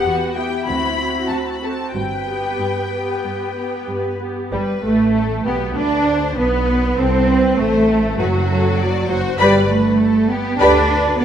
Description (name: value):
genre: quick classical-period movement for string orchestra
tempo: 92-101 BPM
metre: 4/4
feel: rubato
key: G major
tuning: A4 = 440 Hz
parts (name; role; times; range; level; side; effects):
- rich symphonic violin section; melody; 0.0-11.2 s; G4 to B5; -25 LUFS; left 5 dB; none
- rich symphonic violin section; second line; 0.0-10.9 s; G3 to B5; -22 LUFS; left 2 dB; none
- rich symphonic viola section; accompaniment; 0.0-10.9 s; F#3 to B4; -22 LUFS; right 1 dB; none
- rich symphonic cello section; bass; 0.1-11.2 s; D2 to D4; -20 LUFS; right 2 dB; none
- rich symphonic double bass section; bass; 0.7-11.1 s; F#1 to D2; -22 LUFS; right 1 dB; none
room: moderate concert hall reverb, RT60 2.4 s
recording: none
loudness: -15 LUFS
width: side -9 dB against mid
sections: 0.0-4.5 A section; 4.5-11.2 B section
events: none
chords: 0.0 Em; 0.7 D9; 1.9 G; 7.0 F#dim; 9.4 G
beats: 0.06 0.68 1.30 | 1.95 2.60 3.24 3.88 | 4.53 5.15 5.76 6.37 | 6.98 7.58 8.19 8.79 | 9.39 10.00 10.60 11.19